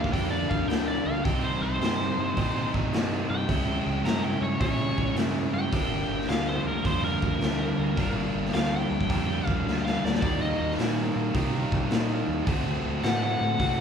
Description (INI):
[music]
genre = blues rock power trio and southern rock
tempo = 107 BPM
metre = 4/4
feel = swing 67% on 8ths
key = G minor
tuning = A4 = 436 Hz
[part]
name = biting lead guitar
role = melody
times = 0.0-13.8 s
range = Bb4 to A#5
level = -31 LUFS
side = left 1 dB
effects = overdrive
[part]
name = overdriven electric guitar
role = riff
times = 0.0-13.8 s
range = G2 to F#4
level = -28 LUFS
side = equal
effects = none
[part]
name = growling fingered electric bass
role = bass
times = 0.0-13.8 s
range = G1 to C3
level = -32 LUFS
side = equal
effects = overdrive
[part]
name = raw garage drum kit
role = drums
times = 0.0-13.8 s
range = hi-hat, kick drum, snare drum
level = -29 LUFS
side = equal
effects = none
[sound]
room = moderate large studio reverb, RT60 0.8 s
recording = band playing live in one room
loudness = -24 LUFS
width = side -7 dB against mid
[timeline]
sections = 0.0-13.8 A section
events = lead electric guitar solo 0.0-13.8; drum fill 9.7-10.2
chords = 0.0 Gm; 1.2 Cm; 3.5 C#dim7; 5.7 Gm; 10.2 Eb; 12.5 D7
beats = 0.13 0.69 | 1.25 1.80 2.36 2.92 | 3.48 4.04 4.60 5.16 | 5.72 6.29 6.85 7.41 | 7.97 8.53 9.10 9.66 | 10.22 10.78 11.35 11.91 | 12.47 13.04 13.60